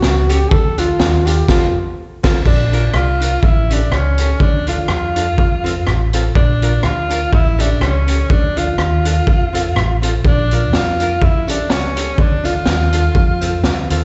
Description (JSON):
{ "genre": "ska", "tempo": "123 BPM", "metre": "4/4", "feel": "swing 56% on 8ths", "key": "Bb major", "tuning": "A4 = 440 Hz", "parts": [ { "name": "breathy trombone", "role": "melody", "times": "0.0-1.8 s", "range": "F4 to A4", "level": "-21 LUFS", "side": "equal", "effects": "slapback echo, plate reverb" }, { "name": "vintage muted fingered electric bass", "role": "bass", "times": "0.0-14.0 s", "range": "F1 to F2", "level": "-19 LUFS", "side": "equal", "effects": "none" }, { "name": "raw garage drum kit", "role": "drums", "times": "0.0-14.0 s", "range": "crash cymbal, hi-hat, kick drum, rim click, snare drum", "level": "-20 LUFS", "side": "equal", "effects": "none" }, { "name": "archtop guitar, miked and amplified", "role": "accompaniment", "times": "0.3-14.0 s", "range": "C4 to Bb4", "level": "-28 LUFS", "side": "equal", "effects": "plate reverb, slapback echo" }, { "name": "tambourine", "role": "percussion", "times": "0.3-1.4, 10.5-14.0 s", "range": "none", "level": "-36 LUFS", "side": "equal", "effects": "none" }, { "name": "breathy tenor saxophone", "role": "melody", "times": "2.5-13.9 s", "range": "C#4 to F4", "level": "-22 LUFS", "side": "equal", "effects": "slapback echo, plate reverb" } ], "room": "little or no reverb", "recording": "live gig heard through the venue's PA, recital hall reverb, nothing above 8.0 kHz", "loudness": "-15 LUFS", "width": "mono", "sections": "0.0-2.5 A section; 2.5-14.0 B section", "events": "trombone solo 0.0-2.5; band accent 1.5-2.5", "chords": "0.0 A7; 0.5 Dm; 1.5 F; 2.5 Bb; 3.4 A7; 4.4 Dm; 5.4 F; 6.4 Bb; 7.3 A7; 8.3 Dm; 9.3 F; 10.2 Bb; 11.2 A7; 12.2 Dm; 13.2 F" }